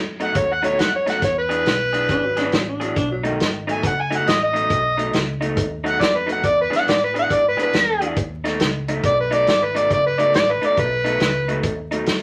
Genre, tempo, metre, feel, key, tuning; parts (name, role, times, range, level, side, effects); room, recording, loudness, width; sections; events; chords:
electric blues shuffle; 138 BPM; 4/4; swing 65% on 8ths; B mixolydian; A4 = 439 Hz
fingered electric bass; bass; 0.0-12.2 s; F#1 to A2; -33 LUFS; equal
overdriven harmonica; melody; 0.2-11.6 s; B4 to G#5; -21 LUFS; equal
electric guitar through a small old amp; riff; 0.2-12.2 s; B2 to G#4; -28 LUFS; equal
natural country drum kit; drums; 0.2-12.2 s; hi-hat, kick drum, snare drum; -26 LUFS; equal
growling tenor saxophone; second line; 2.1-3.6 s; D#3 to D4; -28 LUFS; equal
wet studio reverb, RT60 0.5 s; vinyl crackle, lossy compression artefacts; -20 LUFS; mono
0.0-12.2 A section
0.0 B7; 1.2 E7; 3.0 B7; 6.4 E7; 8.2 B7